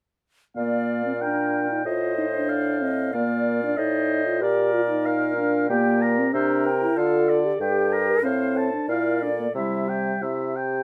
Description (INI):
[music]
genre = quick classical-period movement for wind quintet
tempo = 94 BPM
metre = 2/4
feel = straight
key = Bb major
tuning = A4 = 443 Hz
[part]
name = bright concert flute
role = melody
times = 0.6-10.5 s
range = G4 to E5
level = -33 LUFS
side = equal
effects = none
[part]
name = warm oboe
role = second line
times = 0.6-10.8 s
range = D5 to Bb5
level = -30 LUFS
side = equal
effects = none
[part]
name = dark French horn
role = accompaniment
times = 0.6-10.2 s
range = G3 to Bb4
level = -28 LUFS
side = equal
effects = none
[part]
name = warm clarinet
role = accompaniment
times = 0.6-10.8 s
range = E4 to D5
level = -33 LUFS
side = equal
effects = none
[part]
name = warm bassoon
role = bass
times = 0.6-10.8 s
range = G2 to D3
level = -29 LUFS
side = equal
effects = none
[sound]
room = light reverb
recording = none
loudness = -23 LUFS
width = mono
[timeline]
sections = 0.6-10.8 A section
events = none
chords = 0.6 Bb; 1.2 Bb6; 1.9 F7/A; 3.1 Bb; 3.8 Cm69/A; 4.4 Bb; 5.7 Gm/Bb; 6.3 C7; 7.0 Dm; 7.6 Gm; 8.2 F/A; 8.9 Bbmaj7; 9.6 C